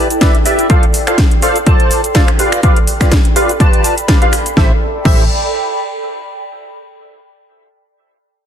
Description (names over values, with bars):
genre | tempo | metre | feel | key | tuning
piano house | 124 BPM | 4/4 | swing 55% on 16ths | A minor | A4 = 441 Hz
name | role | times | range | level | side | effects
percussive organ stab | riff | 0.0-5.2 s | E4 to A5 | -16 LUFS | equal | ensemble chorus, sidechain pumping, ping-pong delay
warbly tape-like pad | texture | 0.0-6.5 s | E4 to C6 | -21 LUFS | right 2 dB | chorus, built-in reverb, sidechain pumping
house drum kit | drums | 0.1-5.2 s | crash cymbal, finger snaps, hi-hat, shaker, snare drum | -18 LUFS | equal | overdrive
electronic kick drum | drums | 0.2-5.2 s | none | -11 LUFS | equal | overdrive
solid FM bass | bass | 4.6-5.3 s | A1 | -17 LUFS | equal | tube saturation, sidechain pumping
room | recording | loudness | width
light reverb | dense, heavily limited modern master | -9 LUFS | side -9 dB against mid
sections
0.0-4.6 A section; 4.6-6.5 B section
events
none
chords
0.0 Em7; 0.7 Dm7; 2.4 G7; 4.6 Am7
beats
0.21 | 0.70 1.18 1.67 2.15 | 2.63 3.12 3.60 4.08 | 4.57 5.05 5.54 6.02